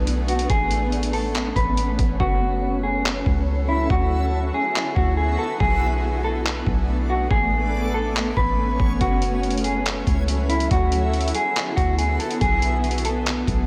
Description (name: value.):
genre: hip hop, atmospheric cloud-rap.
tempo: 141 BPM.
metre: 4/4.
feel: half-time.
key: F# minor.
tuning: A4 = 440 Hz.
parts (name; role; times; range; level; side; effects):
shimmering ambient pad; sustained chords; 0.0-13.7 s; D3 to A4; -30 LUFS; equal; chorus, built-in reverb, sidechain pumping.
soft 808-style bass; bass; 0.0-13.7 s; F#1 to D2; -26 LUFS; equal; none.
trip hop sampler-style drum kit; drums; 0.1-13.6 s; handclaps, hi-hat, kick drum; -27 LUFS; equal; none.
mellow electric guitar; melody; 0.3-13.3 s; E4 to B4; -27 LUFS; equal; low-pass filter, delay.
backwards swelling texture; texture; 3.6-13.7 s; A3 to G#5; -37 LUFS; equal; built-in reverb.
room: light reverb.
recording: none.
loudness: -22 LUFS.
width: mono.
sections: 0.0-13.7 A section.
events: hi-hats muted 2.2-9.0.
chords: 0.5 Amaj9; 2.2 F#m7; 3.9 D69; 5.6 Bm7; 7.3 Amaj9; 9.0 F#m7; 10.7 D69; 12.4 Bm7.